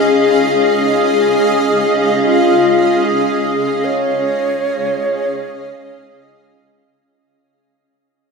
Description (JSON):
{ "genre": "ambient", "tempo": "free time", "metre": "none", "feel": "none", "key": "Db major", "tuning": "A4 = 439 Hz", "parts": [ { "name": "granular cloud pad", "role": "sustained chords", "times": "0.0-7.0 s", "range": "Db4 to F5", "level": "-14 LUFS", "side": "left 1 dB", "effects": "built-in reverb" }, { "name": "bright wooden-headed alto flute", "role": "melody", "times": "0.7-6.2 s", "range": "F4 to Db5", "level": "-17 LUFS", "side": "equal", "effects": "diffuse ambient delay" } ], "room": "wet plate reverb, RT60 3.6 s", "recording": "dreamy mix soaked in reverb", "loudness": "-12 LUFS", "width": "side -4 dB against mid", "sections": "0.0-7.0 A section", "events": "fade-out 2.8-7.0", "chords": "0.0 Dbadd9", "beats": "free time" }